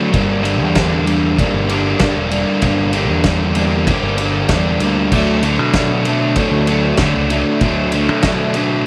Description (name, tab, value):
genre	indie rock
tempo	96 BPM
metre	4/4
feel	straight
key	unclear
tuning	A4 = 439 Hz
part	crunchy overdriven guitar	riff	0.0-8.9 s	G2 to D4	-18 LUFS	equal	spring reverb
part	growling fingered electric bass	bass	0.1-8.9 s	E1 to D3	-22 LUFS	equal	overdrive
part	loose indie drum kit	drums	0.1-8.7 s	crash cymbal, kick drum, ride cymbal, snare drum	-23 LUFS	equal	none
room	light reverb, small room ambience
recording	none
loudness	-16 LUFS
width	mono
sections	0.0-8.9 A section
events	none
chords	0.1 Gm; 5.1 D